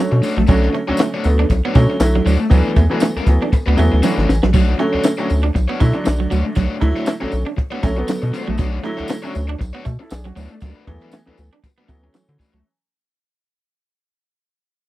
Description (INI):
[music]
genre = funk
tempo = 118 BPM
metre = 4/4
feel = swing 56% on 16ths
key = B minor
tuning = A4 = 440 Hz
[part]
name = electric guitar at the edge of break-up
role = riff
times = 0.0-12.6 s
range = F#3 to D4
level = -24 LUFS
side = right 7 dB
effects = none
[part]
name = bright upright piano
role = stabs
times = 0.0-12.7 s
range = D3 to A4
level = -22 LUFS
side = right 1 dB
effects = none
[part]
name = raw garage guitar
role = accompaniment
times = 0.1-12.6 s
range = A3 to C#5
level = -24 LUFS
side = left 3 dB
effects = overdrive
[part]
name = rubbery square bass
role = bass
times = 0.1-12.6 s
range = G#1 to D3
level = -17 LUFS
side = equal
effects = none
[part]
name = compact cocktail drum kit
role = drums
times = 0.1-12.5 s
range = crash cymbal, handclaps, hi-hat, kick drum, snare drum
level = -16 LUFS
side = equal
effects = none
[part]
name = tambourine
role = percussion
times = 0.2-12.5 s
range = none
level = -39 LUFS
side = left 2 dB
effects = none
[sound]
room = little or no reverb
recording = dry, close 1970s-style studio recording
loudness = -15 LUFS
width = side -16 dB against mid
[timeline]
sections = 0.0-4.5 A section; 4.5-12.7 B section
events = drum fill 4.0-4.5; fade-out 4.5-12.7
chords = 0.0 Bm9; 2.5 D6; 4.5 Bm9; 10.6 D6